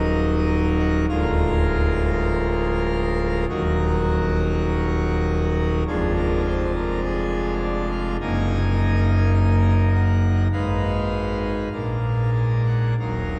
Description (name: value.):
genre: classical, chorale-style piece for pipe organ.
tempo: 50 BPM.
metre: 4/4.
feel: rubato.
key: Eb minor.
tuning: A4 = 440 Hz.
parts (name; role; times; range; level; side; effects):
pipe organ, full organ; solo; 0.0-13.4 s; D1 to Ab5; -22 LUFS; equal; none.
room: wet cathedral reverb, RT60 4.4 s.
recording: dark, warm production.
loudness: -22 LUFS.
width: mono.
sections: 0.0-13.4 A section.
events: none.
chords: 0.0 Ebm; 1.1 Bb7/D; 3.5 Ebm; 5.9 Ddim/F; 8.2 Ebm/Gb; 10.5 Abm; 11.7 Bb7.